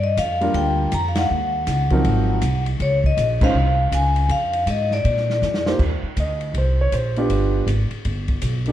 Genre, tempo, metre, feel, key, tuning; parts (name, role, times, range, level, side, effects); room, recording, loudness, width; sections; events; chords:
jazz, small-group swing and bop; 160 BPM; 4/4; swing 63% on 8ths; Eb major; A4 = 440 Hz
vibraphone with medium hard mallets; melody; 0.0-5.6 s; Db5 to Bb5; -22 LUFS; left 2 dB
upright bass; bass; 0.0-8.7 s; G1 to Bb2; -21 LUFS; equal
open jazz drum kit; drums; 0.2-8.7 s; crash cymbal, hi-hat, kick drum, ride cymbal, snare drum; -27 LUFS; equal
warm concert grand piano; accompaniment; 0.4-8.7 s; F3 to Eb5; -23 LUFS; right 2 dB
light reverb; dark, warm production; -18 LUFS; side -12 dB against mid
0.0-5.8 A section; 5.8-8.7 B section
band accent 1.1, 3.4; drum fill 5.4-5.8
0.0 Gm7; 1.3 Ebm7; 2.1 Ab13; 2.8 Dbmaj7; 4.3 Fm; 5.0 Bb; 5.8 Eb5; 7.3 G7